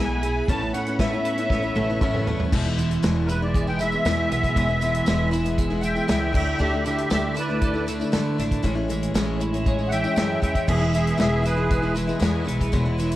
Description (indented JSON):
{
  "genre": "folk rock and heartland rock",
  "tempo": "118 BPM",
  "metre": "4/4",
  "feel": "straight",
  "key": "E mixolydian",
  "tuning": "A4 = 439 Hz",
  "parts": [
    { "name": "musette accordion", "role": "melody", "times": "0.0-12.0 s", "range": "G4 to A5", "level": "-27 LUFS", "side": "equal", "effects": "analog delay" },
    { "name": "picked steel-string acoustic guitar", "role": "accompaniment", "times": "0.0-13.2 s", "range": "E2 to B4", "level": "-29 LUFS", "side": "left 4 dB", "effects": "none" },
    { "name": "rich chamber string section", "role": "sustained chords", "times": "0.0-13.2 s", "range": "G#3 to B5", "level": "-35 LUFS", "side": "left 1 dB", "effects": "none" },
    { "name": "twelve-string electric guitar", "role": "riff", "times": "0.0-13.2 s", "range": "E2 to B4", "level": "-27 LUFS", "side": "right 3 dB", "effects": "analog chorus" },
    { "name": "upright bass", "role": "bass", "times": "0.0-13.2 s", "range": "E1 to D3", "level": "-27 LUFS", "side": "equal", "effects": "tube saturation" },
    { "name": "natural country drum kit", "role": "drums", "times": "0.2-13.2 s", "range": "crash cymbal, hi-hat, kick drum, snare drum, toms", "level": "-26 LUFS", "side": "equal", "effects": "none" },
    { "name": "tambourine", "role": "percussion", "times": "2.5-13.1 s", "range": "none", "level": "-43 LUFS", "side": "right 5 dB", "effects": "none" }
  ],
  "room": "light reverb",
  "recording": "worn, warbling old tape, cassette tape, warbly pitch drift",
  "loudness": "-20 LUFS",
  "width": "side -15 dB against mid",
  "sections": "0.0-2.5 A section; 2.5-13.2 B section",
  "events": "drum fill 1.5-2.5; accordion solo 2.5-13.2",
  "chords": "0.5 Aadd9; 2.5 E; 6.3 Dsus2; 8.6 Amaj7; 10.7 E"
}